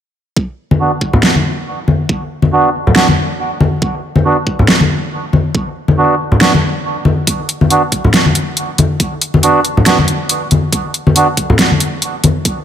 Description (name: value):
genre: deep dubstep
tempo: 139 BPM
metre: 4/4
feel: swing 57% on 16ths, half-time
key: B minor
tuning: A4 = 440 Hz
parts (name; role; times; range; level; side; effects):
- electronic kick drum; drums; 0.4-12.6 s; none; -16 LUFS; right 1 dB; overdrive, high-pass filter on kick
- congas; percussion; 0.7-12.3 s; none; -14 LUFS; left 2 dB; dub echo
- melodica; stabs; 0.8-11.3 s; B3 to F#4; -16 LUFS; right 3 dB; low-pass filter, dub echo
- dubstep drum kit; drums; 1.2-12.6 s; hi-hat, snare drum; -14 LUFS; right 1 dB; overdrive
room: moderate echo chamber reverb, RT60 2.2 s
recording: none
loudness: -11 LUFS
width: side -9 dB against mid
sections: 0.4-12.6 A section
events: none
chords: 0.4 Bm